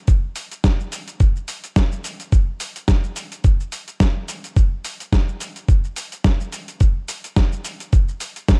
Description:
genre	nu-disco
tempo	107 BPM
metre	4/4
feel	swing 56% on 16ths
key	none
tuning	none
part	dusty soul sampler-style drum kit	drums	0.1-8.6 s	hi-hat, shaker, snare drum	-27 LUFS	equal	overdrive
part	electronic kick drum	drums	0.1-8.6 s	none	-18 LUFS	equal	overdrive
room	little or no reverb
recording	dark, warm production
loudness	-21 LUFS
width	mono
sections	0.0-8.6 A section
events	none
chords	none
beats	| 0.08 0.64 1.20 1.76 | 2.32 2.88 3.44 4.00 | 4.56 5.12 5.68 6.25 | 6.81 7.37 7.93 8.49

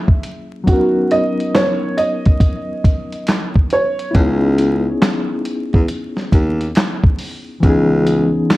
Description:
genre	lo-fi hip hop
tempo	69 BPM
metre	4/4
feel	swing 64% on 16ths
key	C# dorian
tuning	A4 = 442 Hz
part	dark upright piano	melody	0.0-4.1 s	F#4 to E5	-19 LUFS	right 2 dB	low-pass filter, plate reverb
part	reed electric piano	accompaniment	0.0-8.6 s	E3 to A#4	-20 LUFS	left 2 dB	fast tremolo, cassette tape, low-pass filter, plate reverb
part	dusty soul sampler-style drum kit	drums	0.1-8.6 s	handclaps, hi-hat, kick drum, snare drum	-14 LUFS	equal	none
part	mellow baritone saxophone	bass	4.2-8.4 s	C#2 to E2	-17 LUFS	equal	none
part	finger snap	percussion	5.0-8.6 s	none	-33 LUFS	right 4 dB	none
room	moderate studio reverb, RT60 0.6 s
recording	dark, warm production, vinyl crackle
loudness	-14 LUFS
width	side -18 dB against mid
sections	0.0-4.2 A section; 4.2-8.6 B section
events	filter sweep 0.0-4.2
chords	0.0 F#7; 0.7 Bmaj7; 4.2 C#m9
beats	| 0.67 1.54 2.41 3.28 | 4.15 5.02 5.89 6.76 | 7.63 8.50

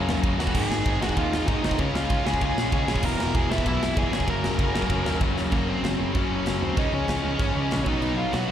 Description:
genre	punk rock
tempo	193 BPM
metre	4/4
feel	straight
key	unclear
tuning	A4 = 440 Hz
part	distorted electric guitar	riff	0.0-8.5 s	E2 to Db4	-29 LUFS	left 11 dB	overdrive, slapback echo
part	heavy high-gain guitar	riff	0.0-8.5 s	E2 to Db4	-34 LUFS	left 2 dB	distortion, slapback echo
part	overdriven electric guitar	riff	0.0-8.5 s	Gb2 to F4	-30 LUFS	right 10 dB	slapback echo
part	growling picked electric bass	bass	0.0-8.5 s	E1 to Eb2	-29 LUFS	equal	overdrive
part	tight metal drum kit	drums	0.1-8.4 s	crash cymbal, kick drum, ride cymbal, snare drum	-28 LUFS	equal	none
part	dark smooth lead guitar	melody	0.4-8.5 s	Bb3 to Bb5	-29 LUFS	right 2 dB	overdrive, digital delay
room	light reverb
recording	live gig heard through the venue's PA, recital hall reverb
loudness	-22 LUFS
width	side -10 dB against mid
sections	0.0-5.5 A section; 5.5-8.5 B section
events	drum fill 5.4; half time 5.5-8.5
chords	0.0 Gb; 0.5 Ab; 1.8 Db; 3.0 E; 4.1 Gb; 6.8 Db; 7.9 B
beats	0.23 | 0.54 0.86 1.17 1.48 | 1.79 2.10 2.41 2.72 | 3.04 3.35 3.66 3.97 | 4.28 4.59 4.90 5.21 | 5.52 5.83 6.15 6.46 | 6.77 7.08 7.39 7.71 | 8.02 8.33

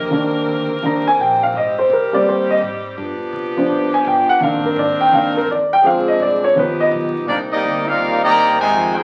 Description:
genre	jazz, big band swing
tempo	167 BPM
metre	4/4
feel	swing 66% on 8ths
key	C minor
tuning	A4 = 440 Hz
part	warm grand piano	accompaniment	0.0-7.1 s	Eb3 to Bb5	-17 LUFS	equal	none
part	clear saxophone section	sustained chords	0.0-9.0 s	C3 to Bb4	-26 LUFS	equal	none
part	upright bass	bass	0.0-9.0 s	G1 to C3	-37 LUFS	equal	none
part	clear trumpet section	melody	7.3-9.0 s	Bb3 to Bb5	-18 LUFS	equal	none
part	bright trombone section	second line	7.3-9.0 s	C3 to Ab4	-25 LUFS	equal	none
room	wet club reverb, RT60 0.6 s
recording	very old 78 rpm record, vinyl crackle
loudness	-17 LUFS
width	mono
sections	0.0-7.3 A section; 7.3-9.0 B section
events	grand piano solo 0.0-7.3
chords	0.0 Cm9; 1.5 Abmaj7; 3.0 G7; 4.4 Cm9; 5.8 Dm7b5; 6.6 G7b13; 7.3 Cm9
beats	| 0.11 0.46 0.82 1.18 | 1.54 1.90 2.26 2.61 | 2.97 3.33 3.69 4.05 | 4.41 4.76 5.12 5.48 | 5.84 6.20 6.56 6.92 | 7.28 7.64 8.00 8.35 | 8.71

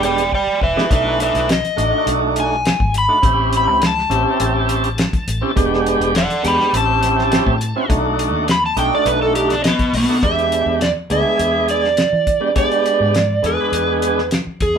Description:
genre	straight-eighth soul blues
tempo	103 BPM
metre	4/4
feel	straight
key	E mixolydian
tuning	A4 = 441 Hz
part	overdriven slide guitar	melody	0.0-14.8 s	B3 to B5	-18 LUFS	right 1 dB	none
part	tonewheel organ	accompaniment	0.0-14.8 s	G#3 to G#4	-19 LUFS	right 2 dB	slow rotary speaker, overdrive
part	vintage muted fingered electric bass	bass	0.0-14.8 s	E1 to E3	-23 LUFS	left 1 dB	none
part	cloth-damped thuddy drum kit	drums	0.0-14.7 s	hi-hat, kick drum, snare drum	-20 LUFS	left 1 dB	none
room	wet small room reverb, RT60 0.6 s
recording	band playing live in one room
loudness	-14 LUFS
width	side -7 dB against mid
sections	0.0-10.2 A section; 10.2-14.8 B section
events	electric slide guitar solo 0.0-10.2; drum fill 0.3-0.9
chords	0.0 E7#9; 0.9 B7#9; 3.2 A7#9; 5.6 E7#9; 6.7 A7#9; 7.9 B7#9; 10.2 E7#9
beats	0.32 | 0.91 1.49 2.07 2.65 | 3.24 3.82 4.40 4.98 | 5.57 6.15 6.73 7.31 | 7.90 8.48 9.06 9.64 | 10.23 10.81 11.39 11.98 | 12.56 13.14 13.73 14.31

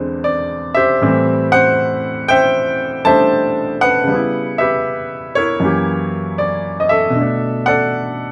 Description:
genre	solo jazz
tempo	78 BPM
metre	4/4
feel	swing 66% on 8ths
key	unclear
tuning	A4 = 441 Hz
part	clear baby grand piano	solo	0.0-8.3 s	E2 to A5	-16 LUFS	equal	none
room	wet studio ambience, RT60 0.5 s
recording	band playing live in one room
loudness	-16 LUFS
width	mono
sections	0.0-8.3 A section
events	none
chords	0.0 E7b13; 1.0 Am7; 4.1 C#m7b5; 5.6 F#7b9; 7.1 Bm7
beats	0.25 | 1.02 1.78 2.55 3.31 | 4.08 4.85 5.61 6.38 | 7.14 7.91

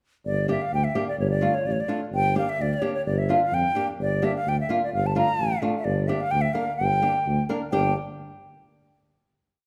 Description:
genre	klezmer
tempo	128 BPM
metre	2/4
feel	straight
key	G dorian sharp4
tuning	A4 = 440 Hz
part	mellow tuba	bass	0.2-7.9 s	G1 to F2	-30 LUFS	equal	none
part	silver concert flute	melody	0.3-7.9 s	C#5 to Bb5	-28 LUFS	equal	none
part	nylon-string guitar	accompaniment	0.5-7.9 s	A3 to Bb4	-29 LUFS	equal	none
room	moderate recital hall reverb, RT60 1.6 s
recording	none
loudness	-24 LUFS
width	mono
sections	0.2-7.7 A section; 7.7-8.6 final chord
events	none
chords	0.2 Gm; 1.2 Dm/G; 2.1 Gm; 3.0 Bb/G; 4.9 Dm/G; 5.9 Gm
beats	| 0.24 0.71 | 1.18 1.64 | 2.11 2.58 | 3.05 3.52 | 3.98 4.45 | 4.92 5.39 | 5.86 6.32 | 6.79 7.25 | 7.72

